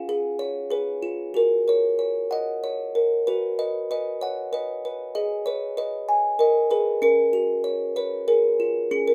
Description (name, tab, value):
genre	children's music, lullaby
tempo	95 BPM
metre	3/4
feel	rubato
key	F# major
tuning	A4 = 440 Hz
part	music box	solo	0.0-9.1 s	C#4 to G#5	-24 LUFS	equal	none
room	light reverb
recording	none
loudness	-24 LUFS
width	mono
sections	0.0-1.4 A section; 1.4-9.1 B section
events	none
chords	0.0 C#; 1.4 F#; 3.3 B; 5.1 G#m; 7.0 F#/C#; 8.3 C#